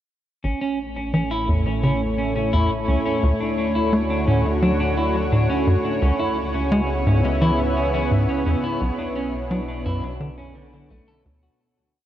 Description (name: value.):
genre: ambient, sequencer-driven space music.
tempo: 86 BPM.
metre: 4/4.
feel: straight.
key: unclear.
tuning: A4 = 440 Hz.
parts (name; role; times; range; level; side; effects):
lush unison pad; sustained chords; 1.0-11.6 s; A2 to C#5; -24 LUFS; equal; chorus, shimmer reverb.
semi-hollow electric guitar; arpeggios; 0.4-11.6 s; D3 to A4; -26 LUFS; equal; auto-pan, ping-pong delay, shimmer reverb.
tight sequencer bass; riff; 0.4-11.5 s; A1 to A3; -22 LUFS; equal; ping-pong delay.
round analog bass; bass; 0.4-11.6 s; A1 to D2; -29 LUFS; equal; none.
room: wet huge ambient reverb, RT60 8.4 s.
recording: worn, warbling old tape, cassette tape, warbly pitch drift.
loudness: -19 LUFS.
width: side -12 dB against mid.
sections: 0.4-11.6 A section.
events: fade-out 7.9-11.6.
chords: 0.4 A; 3.2 Dmaj7; 6.0 C#m7; 8.8 Bmadd9.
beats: | 0.44 1.14 1.83 2.53 | 3.23 3.93 4.63 5.32 | 6.02 6.72 7.42 8.11 | 8.81 9.51 10.21 10.90.